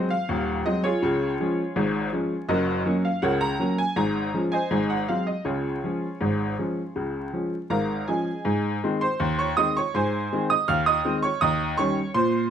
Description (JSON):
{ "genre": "ragtime piano", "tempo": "81 BPM", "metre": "2/4", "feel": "straight", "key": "Db major, Ab major from 8.5 s", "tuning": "A4 = 439 Hz", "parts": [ { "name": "clear upright piano", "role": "solo", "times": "0.0-12.5 s", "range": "Eb1 to F6", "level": "-22 LUFS", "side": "equal", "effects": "none" } ], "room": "moderate studio reverb, RT60 0.8 s", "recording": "dark, warm production, vinyl crackle", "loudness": "-22 LUFS", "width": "side -8 dB against mid", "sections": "0.0-8.5 A section; 8.5-12.5 B section", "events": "none", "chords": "0.0 Ab7; 1.0 Db; 2.5 Gb; 4.0 Db/Ab; 4.7 Ab7; 5.5 Db; 8.5 Ab; 11.4 Eb7", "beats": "0.29 | 1.03 1.76 | 2.50 3.24 | 3.97 4.72 | 5.46 6.21 | 6.97 7.71 | 8.46 9.21 | 9.95 10.68 | 11.42 12.16" }